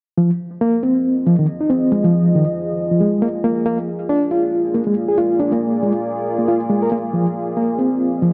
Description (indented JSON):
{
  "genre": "breakbeat",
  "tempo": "138 BPM",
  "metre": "4/4",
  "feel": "swing 57% on 16ths",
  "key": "F dorian",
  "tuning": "A4 = 435 Hz",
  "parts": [
    { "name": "deep dark ambient pad", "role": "sustained chords", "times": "1.0-8.3 s", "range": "F3 to Eb5", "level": "-25 LUFS", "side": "equal", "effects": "chorus, built-in reverb" },
    { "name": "bright reed electric piano", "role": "riff", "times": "0.2-8.3 s", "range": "Eb3 to Bb4", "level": "-19 LUFS", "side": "equal", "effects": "fast tremolo, overdrive, low-pass filter, dub echo" }
  ],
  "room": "moderate plate reverb, RT60 3.4 s",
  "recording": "dark, warm production",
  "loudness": "-18 LUFS",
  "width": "mono",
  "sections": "0.2-8.3 A section",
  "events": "filter sweep on reed electric piano 0.2-8.3",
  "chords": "0.2 Fm7; 3.7 Bb7; 7.1 Fm7"
}